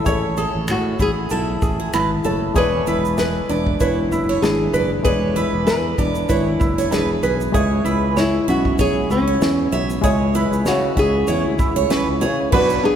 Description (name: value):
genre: acoustic pop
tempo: 96 BPM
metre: 4/4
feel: swing 55% on 16ths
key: unclear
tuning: A4 = 440 Hz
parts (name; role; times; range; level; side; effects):
- felt-muted upright piano; accompaniment; 0.0-13.0 s; G#3 to D5; -28 LUFS; left 2 dB; none
- ukulele; accompaniment; 0.0-13.0 s; C#4 to C#5; -23 LUFS; right 2 dB; none
- picked steel-string acoustic guitar; arpeggios; 0.1-12.8 s; G#4 to E5; -26 LUFS; right 6 dB; none
- sustaining fretless electric bass; bass; 0.1-12.8 s; E1 to C#3; -22 LUFS; equal; none
- natural country drum kit; drums; 0.1-12.8 s; crash cymbal, finger snaps, kick drum, shaker, snare drum; -25 LUFS; equal; none
- nylon-string guitar; melody; 0.7-13.0 s; C#4 to B4; -22 LUFS; left 3 dB; none
room: wet cathedral reverb, RT60 6.2 s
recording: recorded in a church or concert hall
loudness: -16 LUFS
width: side -9 dB against mid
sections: 0.0-12.5 A section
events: none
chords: 0.0 Amaj7; 2.6 E7; 7.5 C#m